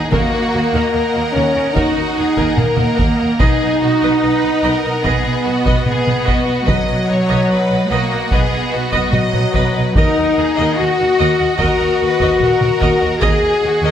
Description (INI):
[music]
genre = cinematic, epic orchestral film score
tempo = 73 BPM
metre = 4/4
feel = straight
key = Eb minor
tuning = A4 = 440 Hz
[part]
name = clear symphonic violin section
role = melody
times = 0.0-13.9 s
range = Gb4 to D#5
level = -23 LUFS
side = left 1 dB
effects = none
[part]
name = warm symphonic violin section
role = second line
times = 0.0-13.9 s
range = Eb5 to Gb5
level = -26 LUFS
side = left 1 dB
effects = none
[part]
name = mellow French horn section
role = sustained chords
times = 0.0-13.9 s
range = F#3 to Ab4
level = -18 LUFS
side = left 2 dB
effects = none
[part]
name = rich symphonic cello section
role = bass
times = 0.0-13.9 s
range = F#3 to Ab4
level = -22 LUFS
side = right 2 dB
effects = none
[part]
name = rich studio viola section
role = accompaniment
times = 0.1-13.9 s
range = Gb4 to D#5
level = -23 LUFS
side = right 1 dB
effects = none
[part]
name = dark studio double bass section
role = bass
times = 0.1-13.9 s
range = B1 to Eb2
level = -22 LUFS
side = right 3 dB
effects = none
[part]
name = taiko ensemble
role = drums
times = 0.1-13.9 s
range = none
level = -18 LUFS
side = equal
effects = none
[sound]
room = moderate scoring stage reverb, RT60 1.8 s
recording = none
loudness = -13 LUFS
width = side -9 dB against mid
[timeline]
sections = 0.0-13.9 A section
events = none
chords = 0.0 Ebm; 3.4 B; 9.9 Ebm